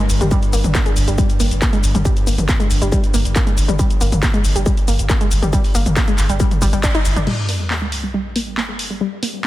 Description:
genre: driving peak-time techno.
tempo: 138 BPM.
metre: 4/4.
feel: straight.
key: G phrygian.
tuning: A4 = 440 Hz.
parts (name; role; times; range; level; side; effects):
warbly dusty pluck; riff; 0.0-9.5 s; G3 to Eb4; -22 LUFS; equal; chorus, sidechain pumping, digital delay.
metallic inharmonic drone; drone; 0.0-7.3 s; G2; -28 LUFS; equal; chorus, built-in reverb, sidechain pumping.
saturated sub bass; bass; 0.1-7.3 s; G1; -19 LUFS; equal; overdrive, sidechain pumping, low-pass filter.
techno drum kit; drums; 0.1-9.5 s; crash cymbal, handclaps, hi-hat, shaker, toms; -22 LUFS; left 1 dB; sidechain pumping on hats, sidechain pumping on cymbals, sidechain pumping on perc, sidechain pumping on toms.
electronic kick drum; drums; 0.3-6.9 s; none; -17 LUFS; equal; distortion.
sub drop; sound effects; 7.3-9.0 s; none; -24 LUFS; equal; none.
room: little or no reverb.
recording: dense, heavily limited modern master.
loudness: -14 LUFS.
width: side -15 dB against mid.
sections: 0.0-7.3 A section; 7.3-9.5 B section.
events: drop 0.0-7.3; band accent 6.8; impact 7.3-9.0; filter sweep on synth arpeggio sound 7.3-9.5.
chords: 0.0 G5.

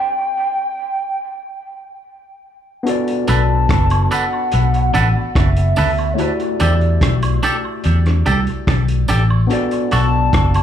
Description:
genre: lovers rock reggae.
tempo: 72 BPM.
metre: 4/4.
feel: straight.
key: unclear.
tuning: A4 = 440 Hz.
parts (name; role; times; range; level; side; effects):
hollow clarinet-like synth lead; melody; 0.0-10.6 s; C#5 to A5; -22 LUFS; equal; chorus, tape echo, slapback echo.
tine electric piano; accompaniment; 2.8-10.6 s; A3 to D5; -22 LUFS; left 2 dB; medium stereo tremolo, tape echo, slapback echo.
vintage drum kit; drums; 2.9-10.6 s; hi-hat, kick drum, rim click; -20 LUFS; equal; none.
twangy electric guitar; stabs; 3.3-10.1 s; D4 to B4; -22 LUFS; right 2 dB; tape echo, slapback echo.
vintage muted fingered electric bass; bass; 3.3-10.6 s; F#1 to E2; -15 LUFS; equal; none.
tambourine and woodblock; percussion; 3.3-10.6 s; none; -31 LUFS; right 5 dB; tape echo, slapback echo.
room: small room ambience.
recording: live gig heard through the venue's PA, club reverb.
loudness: -14 LUFS.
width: side -10 dB against mid.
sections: 0.0-2.9 A section; 2.9-10.6 B section.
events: stop 0.0-2.9.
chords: 0.0 N.C.; 2.9 Bm7; 6.2 Em11; 9.5 Bm7.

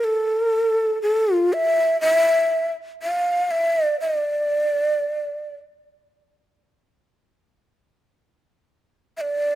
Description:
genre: japanese traditional, Japanese chamber music.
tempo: 56-62 BPM.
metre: 2/4.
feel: rubato.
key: unclear.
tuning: A4 = 441 Hz.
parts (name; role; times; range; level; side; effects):
breathy mellow shakuhachi; solo; 0.0-5.6, 9.2-9.6 s; A4 to F5; -19 LUFS; equal; none.
room: light reverb.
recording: close, detailed microphones.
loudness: -19 LUFS.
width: side -13 dB against mid.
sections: 0.0-9.6 A section.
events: none.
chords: none.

